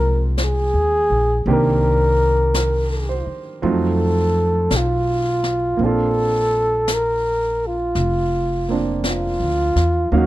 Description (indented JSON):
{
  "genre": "jazz",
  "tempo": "55 BPM",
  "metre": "4/4",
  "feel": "swing 67% on 8ths",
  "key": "unclear",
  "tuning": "A4 = 439 Hz",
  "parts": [
    { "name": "dark flugelhorn", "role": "melody", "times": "0.0-10.3 s", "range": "F4 to Bb4", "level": "-19 LUFS", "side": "equal", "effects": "slapback echo" },
    { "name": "clear baby grand piano", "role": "accompaniment", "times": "0.0-10.3 s", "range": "Eb3 to G5", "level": "-24 LUFS", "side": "right 4 dB", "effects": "none" },
    { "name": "upright bass", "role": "bass", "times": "0.0-10.3 s", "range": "F1 to F2", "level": "-21 LUFS", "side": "equal", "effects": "none" },
    { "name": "jazz brush drum kit", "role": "drums", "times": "0.4-10.3 s", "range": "brushed snare drum, hi-hat, snare drum", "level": "-29 LUFS", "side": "left 2 dB", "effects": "none" }
  ],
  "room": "little or no reverb",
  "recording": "dry, close 1970s-style studio recording",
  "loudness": "-16 LUFS",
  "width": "side -16 dB against mid",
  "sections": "0.0-10.3 A section",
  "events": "none",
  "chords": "0.0 Fm7; 1.5 Cm7; 3.6 F7b9; 5.8 Bbmaj7"
}